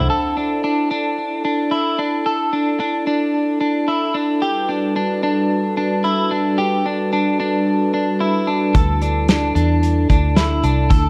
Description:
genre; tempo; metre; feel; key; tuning
dream pop; 111 BPM; 4/4; straight; unclear; A4 = 442 Hz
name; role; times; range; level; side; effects
glass harmonica; sustained chords; 0.0-11.1 s; G3 to B4; -24 LUFS; equal; none
clean electric guitar; arpeggios; 0.0-11.1 s; D4 to A4; -22 LUFS; equal; analog chorus, tape echo
vintage muted fingered electric bass; bass; 0.0-0.1, 8.7-11.1 s; C2 to E2; -20 LUFS; equal; none
loose indie drum kit; drums; 8.7-11.0 s; hi-hat, kick drum, snare drum; -19 LUFS; equal; none
room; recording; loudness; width
light reverb, studio reverb; dark, warm production; -18 LUFS; mono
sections
0.1-11.1 A section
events
none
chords
0.1 Dsus2; 4.4 Gmaj7; 8.7 Dsus2

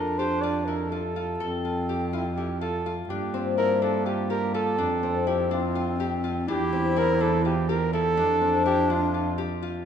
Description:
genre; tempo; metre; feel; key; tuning
contemporary instrumental, chamber music in an uneven meter; 248 BPM (eighths); 7/8; straight; F major; A4 = 440 Hz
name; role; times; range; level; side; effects
mellow flugelhorn; melody; 0.0-9.4 s; E4 to D5; -28 LUFS; right 3 dB; none
breathy clarinet; second line; 0.0-9.6 s; Bb3 to E4; -30 LUFS; left 1 dB; none
Celtic harp; arpeggios; 0.0-9.9 s; C4 to A4; -29 LUFS; left 6 dB; none
warm cello; bass; 0.0-9.9 s; E2 to G2; -30 LUFS; right 3 dB; none
room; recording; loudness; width
moderate scoring stage reverb, RT60 2.0 s; recorded in a church or concert hall; -23 LUFS; side -8 dB against mid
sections
0.0-3.1 A section; 3.1-9.9 B section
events
none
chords
0.0 Fmaj7; 3.1 Gm7; 4.8 Fmaj9; 6.5 Cadd9/E; 8.2 Dm9/F

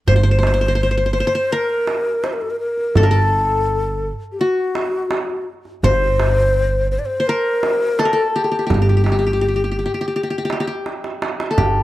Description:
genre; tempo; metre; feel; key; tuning
Arabic maqam ensemble; 84 BPM; 4/4; straight; G maqam nahawand; A4 = 441 Hz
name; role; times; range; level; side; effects
qanun; melody; 0.1-11.8 s; F#4 to C5; -21 LUFS; left 1 dB; none
breathy ney; second line; 0.1-10.9 s; F#4 to D5; -20 LUFS; left 2 dB; none
upright bass; bass; 0.1-11.8 s; G1; -19 LUFS; equal; none
darbuka; percussion; 0.1-11.7 s; none; -21 LUFS; right 3 dB; none
room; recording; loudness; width
small room ambience; dry, close 1970s-style studio recording; -16 LUFS; side -15 dB against mid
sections
0.1-11.6 A section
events
drum fill 10.9-11.6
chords
none

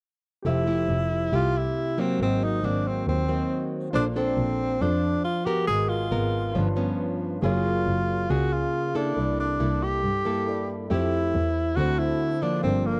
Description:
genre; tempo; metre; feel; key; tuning
bossa nova; 138 BPM; 4/4; straight; F major; A4 = 440 Hz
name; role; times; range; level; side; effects
warm concert grand piano; accompaniment; 0.4-13.0 s; D4 to E5; -39 LUFS; equal; none
breathy tenor saxophone; melody; 0.5-13.0 s; Bb3 to Ab4; -29 LUFS; equal; none
nylon-string guitar; accompaniment; 0.5-13.0 s; G2 to C5; -30 LUFS; equal; none
warm double bass; bass; 0.5-13.0 s; F1 to G2; -30 LUFS; equal; none
room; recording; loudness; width
small room ambience; dry, close 1970s-style studio recording; -25 LUFS; mono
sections
0.5-13.0 A section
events
none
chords
0.5 Fmaj9; 2.2 Ab9; 3.9 Bbmaj9; 5.7 Abm9; 6.5 G7#11; 7.4 Gbmaj9; 9.2 C13; 10.9 Fmaj9; 11.8 D7

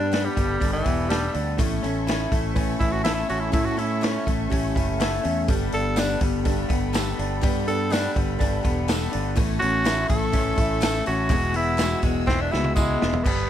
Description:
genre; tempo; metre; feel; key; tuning
folk rock and heartland rock; 123 BPM; 4/4; straight; A mixolydian; A4 = 440 Hz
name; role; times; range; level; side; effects
raspy tenor saxophone; melody; 0.0-13.5 s; E3 to A4; -26 LUFS; equal; none
overdriven reed electric piano; accompaniment; 0.0-13.5 s; B3 to G5; -36 LUFS; right 9 dB; medium tremolo
picked steel-string acoustic guitar; accompaniment; 0.0-13.5 s; E2 to A4; -30 LUFS; left 7 dB; none
rich studio string section; sustained chords; 0.0-13.2 s; G#4 to E6; -37 LUFS; left 3 dB; none
electric guitar through a small old amp; riff; 0.0-13.5 s; E2 to A4; -29 LUFS; equal; none
fingered electric bass; bass; 0.0-13.5 s; E1 to A2; -28 LUFS; equal; none
vintage drum kit; drums; 0.1-13.4 s; crash cymbal, hi-hat, kick drum, snare drum, toms; -26 LUFS; equal; none
tambourine; percussion; 6.0-12.9 s; none; -38 LUFS; right 7 dB; none
room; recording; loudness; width
small room ambience; none; -21 LUFS; side -10 dB against mid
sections
0.0-13.3 A section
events
tenor saxophone solo 0.0-13.3; reed electric piano fill 4.5-5.5; drum fill 12.3-13.3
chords
0.0 Gadd9; 1.6 A; 5.5 Gadd9; 9.4 A; 11.3 Eadd9

